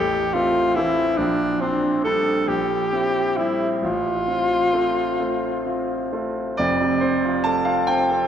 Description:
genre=classical, romantic duo for alto saxophone and grand piano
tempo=42-49 BPM (dotted quarters)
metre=6/8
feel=rubato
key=F major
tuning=A4 = 445 Hz
part: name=clear alto saxophone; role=melody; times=0.0-8.3 s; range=C4 to A4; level=-21 LUFS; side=left 1 dB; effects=none
part: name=bright concert grand piano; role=accompaniment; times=0.0-8.3 s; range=F1 to A5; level=-22 LUFS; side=right 1 dB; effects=none
room=wet church reverb, RT60 3.4 s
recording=recorded in a church or concert hall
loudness=-19 LUFS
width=side -9 dB against mid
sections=0.0-6.6 A section; 6.6-8.3 A section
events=none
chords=0.0 Am; 1.2 Gm/Bb; 2.5 C7/Bb; 3.8 F/A; 6.6 F

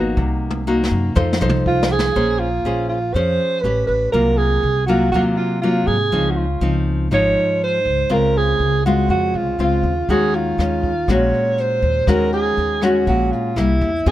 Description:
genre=bossa nova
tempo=121 BPM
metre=4/4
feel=straight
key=Bb minor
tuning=A4 = 439 Hz
part: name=breathy alto saxophone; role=melody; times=0.0-14.1 s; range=E4 to Db5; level=-19 LUFS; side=right 3 dB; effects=none
part: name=nylon-string guitar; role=accompaniment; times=0.0-14.1 s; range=Ab2 to C5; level=-20 LUFS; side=left 2 dB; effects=none
part: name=upright bass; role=bass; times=0.0-14.1 s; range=Ab1 to Ab2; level=-21 LUFS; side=equal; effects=none
part: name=jazz brush drum kit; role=drums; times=0.2-2.1, 10.1-14.1 s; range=hi-hat, kick drum, rim click, snare drum, toms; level=-23 LUFS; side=equal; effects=none
room=little or no reverb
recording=none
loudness=-15 LUFS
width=side -14 dB against mid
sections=0.0-2.2 A section; 2.2-14.1 B section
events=alto saxophone solo 0.0-2.2; drum fill 0.2-2.2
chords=0.2 Cm7b5; 1.2 F7; 2.2 Bbm9; 3.6 A9; 4.1 Ab13/C; 6.1 Dbmaj9; 8.1 Gbmaj7sus2; 10.1 Ebm11; 13.6 C7

